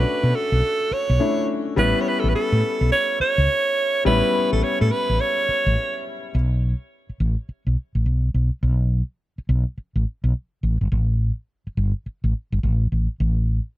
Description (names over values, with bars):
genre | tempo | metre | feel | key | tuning
R&B, new jack swing | 105 BPM | 4/4 | swing 62% on 16ths | unclear | A4 = 440 Hz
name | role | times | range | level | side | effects
breathy alto saxophone | melody | 0.0-6.1 s | A4 to C#5 | -21 LUFS | right 2 dB | none
clear grand piano | accompaniment | 0.0-6.4 s | G3 to F#4 | -25 LUFS | left 4 dB | none
woody fretless electric bass | bass | 0.0-13.6 s | G1 to B2 | -19 LUFS | equal | none
room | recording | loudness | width
small room ambience | none | -19 LUFS | side -15 dB against mid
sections
0.0-6.3 A section; 6.3-13.8 B section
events
none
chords
0.0 Bm11; 1.8 A7; 6.3 Gadd9 (rootless)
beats
0.05 0.62 1.20 | 1.77 2.34 2.91 3.48 | 4.05 4.62 5.20 5.77 | 6.34 6.91 7.48 8.05 | 8.62 9.20 9.77 10.34 | 10.91 11.48 12.05 12.62 | 13.20